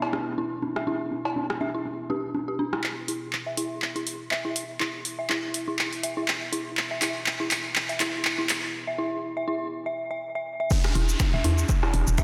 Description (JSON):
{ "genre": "minimal techno", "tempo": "122 BPM", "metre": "4/4", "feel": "swing 56% on 16ths", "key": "unclear", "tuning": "A4 = 441 Hz", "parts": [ { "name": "dark detuned synth bell", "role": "riff", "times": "0.0-12.2 s", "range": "D4 to E5", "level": "-33 LUFS", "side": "equal", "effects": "chorus, sidechain pumping, low-pass filter, diffuse ambient delay" }, { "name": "electronic cowbell, rim click and bongos", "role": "percussion", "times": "0.0-2.8, 10.7-12.2 s", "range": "none", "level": "-33 LUFS", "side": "equal", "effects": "diffuse ambient delay" }, { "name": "deep dark ambient pad", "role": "texture", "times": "0.0-8.7 s", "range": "B3 to B5", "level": "-43 LUFS", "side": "equal", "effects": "chorus, built-in reverb, sidechain pumping" }, { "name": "punchy analog drum machine", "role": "drums", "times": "2.8-12.2 s", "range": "finger snaps, handclaps, hi-hat, shaker", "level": "-30 LUFS", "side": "equal", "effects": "overdrive" }, { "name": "electronic kick drum", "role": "drums", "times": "10.7-12.2 s", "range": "none", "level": "-26 LUFS", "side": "equal", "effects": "overdrive" }, { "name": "downlifter", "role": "sound effects", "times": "10.7-12.2 s", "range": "none", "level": "-36 LUFS", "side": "equal", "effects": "none" }, { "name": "hollow knocking FM bass", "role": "bass", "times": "11.0-12.2 s", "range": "E1 to E2", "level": "-26 LUFS", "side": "equal", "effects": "sidechain pumping" } ], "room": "wet lush hall reverb, RT60 1.7 s, digital ambience", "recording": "dreamy mix soaked in reverb", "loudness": "-28 LUFS", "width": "mono", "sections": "0.0-2.8 A section; 2.8-10.7 B section; 10.7-12.2 C section", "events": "filter sweep on synth bell 0.0-2.8, 2.8-10.7; build-up 2.8-10.7; drum fill 2.8-8.7; break 8.7-10.7; drop 10.7-12.2", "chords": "0.0 E5" }